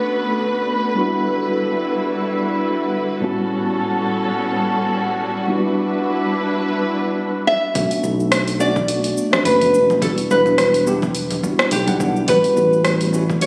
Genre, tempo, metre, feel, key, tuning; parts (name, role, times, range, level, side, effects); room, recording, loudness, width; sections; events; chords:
sunset chillout; 106 BPM; 4/4; swing 56% on 16ths; E dorian; A4 = 440 Hz
mellow tine electric piano; accompaniment; 0.0-13.5 s; A2 to F#5; -24 LUFS; equal; low-pass filter, delay
dark symphonic string section; sustained chords; 0.0-7.7 s; D3 to B4; -23 LUFS; equal
nylon-string guitar; melody; 7.5-13.5 s; G4 to E5; -20 LUFS; equal; delay
fingered electric bass; bass; 7.8-13.5 s; E1 to B1; -26 LUFS; equal
deep house drum kit; drums; 7.8-13.5 s; congas, hi-hat, rim click, shaker; -24 LUFS; equal; overdrive, low-pass filter on hats, low-pass filter on perc, low-pass filter on snare
electronic kick drum; drums; 7.8-13.4 s; -29 LUFS; equal; overdrive
wet lush hall reverb, RT60 2.1 s; recorded on a phone in the room, studio reverb, compression; -19 LUFS; mono
0.0-7.8 A section; 7.8-13.5 B section
filter sweep on tine electric piano 0.0-7.8
0.0 Bm7; 1.0 Em9; 3.2 A13; 5.5 Em9; 7.8 Bm7; 10.0 Em9; 12.3 A13